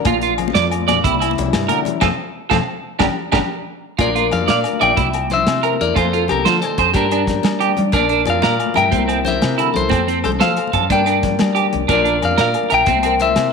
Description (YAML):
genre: highlife guitar band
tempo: 122 BPM (dotted quarters)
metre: 12/8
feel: straight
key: Bb major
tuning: A4 = 439 Hz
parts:
  - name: fingerpicked acoustic archtop guitar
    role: accompaniment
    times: 0.0-13.5 s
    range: G2 to Bb4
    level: -24 LUFS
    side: left 9 dB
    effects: none
  - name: warm soul drum kit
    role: drums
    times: 0.0-13.4 s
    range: hi-hat, kick drum, snare drum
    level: -23 LUFS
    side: right 1 dB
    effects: none
  - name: congas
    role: percussion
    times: 0.0-13.4 s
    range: none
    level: -26 LUFS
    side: left 11 dB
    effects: none
  - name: electric guitar at the edge of break-up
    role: arpeggios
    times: 0.1-13.1 s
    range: C4 to D5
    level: -19 LUFS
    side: right 11 dB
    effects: analog chorus, slapback echo
  - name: woody fretless electric bass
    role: bass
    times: 0.1-13.5 s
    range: G1 to G3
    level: -22 LUFS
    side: right 1 dB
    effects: analog chorus
  - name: agogo bells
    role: percussion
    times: 0.1-13.5 s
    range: none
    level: -28 LUFS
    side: left 10 dB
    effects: none
  - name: clean electric guitar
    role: melody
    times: 4.0-13.5 s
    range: F4 to G5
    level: -18 LUFS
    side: left 3 dB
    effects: wide subtle chorus
room: moderate echo chamber reverb, RT60 1.3 s, small room ambience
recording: 1960s-style stereo with parts hard left and right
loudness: -14 LUFS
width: side -5 dB against mid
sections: 0.0-4.0 A section; 4.0-13.5 B section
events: band accent 2.0-4.0; drum fill 3.8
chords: 0.1 Bb; 1.0 C; 2.0 F; 3.0 Gm; 4.0 Bb; 5.0 C7; 6.0 F; 7.0 Gm; 7.9 Bb; 8.9 C7; 9.9 F; 10.9 Gm; 11.9 Bb; 12.9 C7